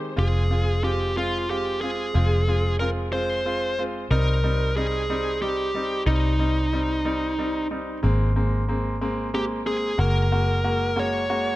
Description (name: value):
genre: six-eight pop ballad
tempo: 61 BPM (dotted quarters)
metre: 6/8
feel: straight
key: unclear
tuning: A4 = 440 Hz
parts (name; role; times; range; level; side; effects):
- bright concert grand piano; accompaniment; 0.0-11.6 s; Eb3 to G4; -28 LUFS; equal; none
- bluesy overdriven lead guitar; melody; 0.2-11.6 s; Eb4 to Db5; -26 LUFS; equal; distortion, tape echo
- vintage muted fingered electric bass; bass; 0.2-11.6 s; F1 to C2; -24 LUFS; equal; none
room: studio ambience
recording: dark, warm production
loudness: -21 LUFS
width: side -17 dB against mid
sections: 0.0-8.0 A section; 8.0-11.6 B section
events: none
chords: 0.2 Fm; 4.1 Cm; 8.0 Abadd9; 10.0 Gbadd9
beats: | 0.18 1.17 | 2.15 3.13 | 4.10 5.08 | 6.06 7.04 | 8.03 9.01 | 9.99 10.97